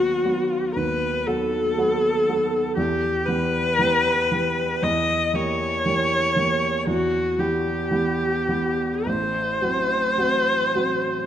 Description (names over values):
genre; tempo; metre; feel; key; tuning
classical, romantic duo for viola and grand piano; 50-61 BPM; 4/4; rubato; E minor; A4 = 440 Hz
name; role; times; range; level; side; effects
rich viola; melody; 0.0-11.3 s; F#4 to D#5; -21 LUFS; left 1 dB; none
warm baby grand piano; accompaniment; 0.0-11.3 s; A1 to G4; -25 LUFS; right 1 dB; none
room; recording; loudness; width
wet concert hall reverb, RT60 1.7 s; none; -20 LUFS; side -10 dB against mid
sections
0.0-11.3 A section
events
none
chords
0.0 B/D#; 2.8 Em; 4.8 Edim7; 6.9 Em; 9.1 F#dim/A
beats
0.75 1.77 | 2.77 3.78 4.83 5.85 | 6.87 7.91 9.06 10.18